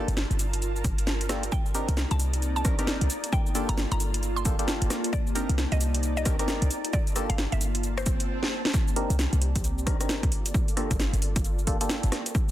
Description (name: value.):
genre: UK garage, two-step garage.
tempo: 133 BPM.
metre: 4/4.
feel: swing 62% on 16ths.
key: C dorian.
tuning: A4 = 439 Hz.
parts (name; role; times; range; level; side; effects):
percussive organ stab; stabs; 0.0-12.3 s; Bb3 to Bb4; -34 LUFS; equal; chorus, phaser, dub echo.
ethereal airy pad; texture; 0.0-8.3 s; Bb3 to Bb5; -35 LUFS; left 1 dB; ensemble chorus, built-in reverb, sidechain pumping.
short 808-style bass; bass; 0.1-12.1 s; G1 to C2; -27 LUFS; equal; none.
house drum kit; drums; 0.1-12.5 s; hi-hat, rim click, shaker, snare drum; -31 LUFS; equal; overdrive.
electronic kick drum; drums; 0.8-12.5 s; none; -27 LUFS; equal; overdrive.
mallet-like synth pluck; melody; 1.5-8.1 s; C5 to C6; -37 LUFS; equal; chorus, dub echo.
warm analog pad; sustained chords; 1.5-12.5 s; Bb3 to D5; -42 LUFS; right 2 dB; chorus, sidechain pumping.
swell; sound effects; 8.0-8.7 s; none; -38 LUFS; right 3 dB; none.
room: light reverb, digital ambience.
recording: dense, heavily limited modern master.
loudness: -24 LUFS.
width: side -13 dB against mid.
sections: 0.0-8.7 A section; 8.7-12.5 A section.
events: swell 8.0-8.7; drum fill 8.4-8.7.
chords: 0.0 Gm9; 1.5 Cm9; 3.1 Gm9; 5.1 Cm9; 6.7 Gm9; 8.7 Cm9; 10.3 Gm9.